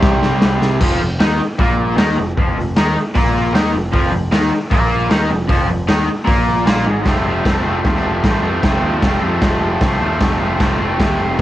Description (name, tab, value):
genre	garage rock duo or trio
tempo	154 BPM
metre	4/4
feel	straight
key	F mixolydian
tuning	A4 = 440 Hz
part	raw garage guitar	riff	0.0-11.4 s	F2 to Eb4	-17 LUFS	equal	overdrive, cassette tape
part	growling picked electric bass	bass	0.0-11.4 s	F1 to F2	-21 LUFS	equal	overdrive
part	raw garage drum kit	drums	0.0-11.4 s	crash cymbal, hi-hat, kick drum, snare drum	-17 LUFS	equal	cassette tape
room	light reverb, small room ambience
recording	home recording on cassette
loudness	-13 LUFS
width	side -14 dB against mid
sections	0.8-7.1 A section; 7.1-11.4 B section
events	drum fill 0.0-0.8, 6.9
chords	0.0 C5; 0.8 F7sus4; 7.1 F